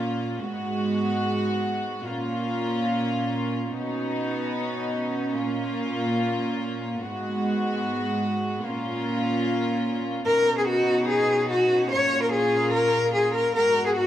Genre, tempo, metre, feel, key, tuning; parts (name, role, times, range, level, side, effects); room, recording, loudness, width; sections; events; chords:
hip hop; free time; Bb phrygian; A4 = 440 Hz
warm studio string section; sustained chords; 0.0-14.1 s; Ab2 to Gb4; -25 LUFS; right 1 dB
rich cello; melody; 10.3-14.1 s; Gb4 to Db5; -20 LUFS; left 1 dB; dub echo
moderate echo chamber reverb, RT60 1.9 s, small room ambience; echo-heavy mix; -22 LUFS; side -11 dB against mid
0.0-10.3 A section; 10.3-14.1 B section
0.4 Abm7; 2.1 Bbm; 3.7 Badd9; 5.3 Bbm; 7.0 Abm7; 8.6 Bbm; 10.3 Badd9; 11.9 Bbm; 13.6 Abm7